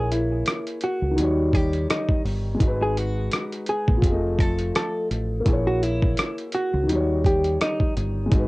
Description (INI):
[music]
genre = lo-fi hip hop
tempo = 84 BPM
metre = 4/4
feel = swing 56% on 16ths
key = unclear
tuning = A4 = 442 Hz
[part]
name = hollow-body jazz guitar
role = melody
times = 0.0-7.9 s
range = D#4 to A4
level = -26 LUFS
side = equal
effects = cassette tape, analog delay
[part]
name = dark upright piano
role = accompaniment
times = 0.0-8.5 s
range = D#3 to Eb5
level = -27 LUFS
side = left 1 dB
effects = cassette tape
[part]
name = deep dub fingered electric bass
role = bass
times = 0.0-8.5 s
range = F1 to D#2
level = -25 LUFS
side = equal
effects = none
[part]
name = dusty soul sampler-style drum kit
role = drums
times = 0.1-8.5 s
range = hi-hat, kick drum, rim click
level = -22 LUFS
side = equal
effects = overdrive, vintage 12-bit sampler grit, cassette tape
[sound]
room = light reverb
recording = home recording on cassette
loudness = -20 LUFS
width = side -22 dB against mid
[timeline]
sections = 0.0-8.5 A section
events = none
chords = 0.0 A#m7b5; 1.2 D#7; 2.6 G#m7; 4.0 F7; 5.5 A#m7b5; 6.9 D#7